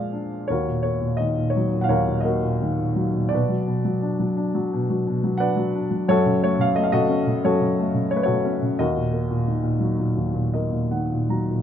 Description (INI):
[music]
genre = classical, lyrical solo piano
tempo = 87 BPM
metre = 4/4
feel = uneven beats, rubato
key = Eb minor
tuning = A4 = 441 Hz
[part]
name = warm baby grand piano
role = solo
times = 0.0-11.6 s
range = Eb2 to Bb5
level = -20 LUFS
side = equal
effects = none
[sound]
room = light reverb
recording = dark, warm production, nothing above 10.6 kHz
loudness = -20 LUFS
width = side -9 dB against mid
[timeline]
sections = 0.5-11.6 A section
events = grand piano fill 10.2-11.6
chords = 0.5 Ebm7; 3.3 Bm; 6.1 Gbm; 8.8 Ebm